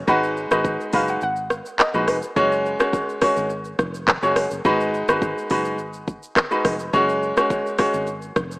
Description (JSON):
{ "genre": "afrobeats", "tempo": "105 BPM", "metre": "4/4", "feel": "straight", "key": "unclear", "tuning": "A4 = 443 Hz", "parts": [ { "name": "fingered electric bass", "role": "bass", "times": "0.0-8.6 s", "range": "F1 to Bb1", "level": "-32 LUFS", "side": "equal", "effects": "none" }, { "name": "soft round pluck", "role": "melody", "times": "0.1-2.2 s", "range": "Cb5 to Gb5", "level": "-27 LUFS", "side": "equal", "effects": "chorus, digital delay" }, { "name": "bright grand piano", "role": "accompaniment", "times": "0.1-8.1 s", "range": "Ab3 to Db5", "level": "-20 LUFS", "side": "equal", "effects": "none" }, { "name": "afro-pop drum kit", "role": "drums", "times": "0.1-8.6 s", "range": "handclaps, hi-hat, kick drum, rim click, shaker", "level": "-22 LUFS", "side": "equal", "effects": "none" } ], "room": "moderate lush hall reverb, RT60 2.1 s", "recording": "rough home demo mix, small speaker sound", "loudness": "-18 LUFS", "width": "side -24 dB against mid", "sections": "0.0-8.6 A section", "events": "kick muted 1.2-2.4", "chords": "0.1 Abm7; 2.4 Gbsus2; 4.7 Abm7; 6.9 Gbsus2", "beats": "| 0.08 0.65 1.22 1.79 | 2.36 2.94 3.51 4.08 | 4.65 5.22 5.79 6.36 | 6.94 7.51 8.08" }